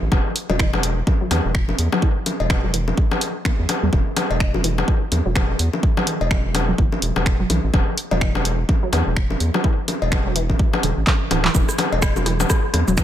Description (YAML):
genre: minimal techno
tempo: 126 BPM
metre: 4/4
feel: swing 59% on 16ths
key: unclear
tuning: A4 = 439 Hz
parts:
  - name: round analog bass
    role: bass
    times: 0.0-13.0 s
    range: D1 to E2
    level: -22 LUFS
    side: equal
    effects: tube saturation, sidechain pumping
  - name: electronic kick drum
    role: drums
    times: 0.1-13.0 s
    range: none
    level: -19 LUFS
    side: equal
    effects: none
  - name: electronic bongos, cowbell and rim click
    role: percussion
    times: 0.1-13.0 s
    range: none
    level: -23 LUFS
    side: left 2 dB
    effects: overdrive, dub echo
  - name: punchy analog drum machine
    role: drums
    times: 0.4-13.0 s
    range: finger snaps, handclaps, hi-hat, shaker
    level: -25 LUFS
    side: right 1 dB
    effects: none
  - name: resonant blip pluck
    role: riff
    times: 0.5-13.0 s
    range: D3 to B3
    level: -27 LUFS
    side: right 1 dB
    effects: chorus, phaser, sidechain pumping, digital delay
room: little or no reverb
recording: none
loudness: -17 LUFS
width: side -11 dB against mid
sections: 0.0-11.5 A section; 11.5-13.0 B section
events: filter sweep on synth pluck 0.0-11.5; drum fill 11.1-11.5; drop 11.5-13.0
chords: none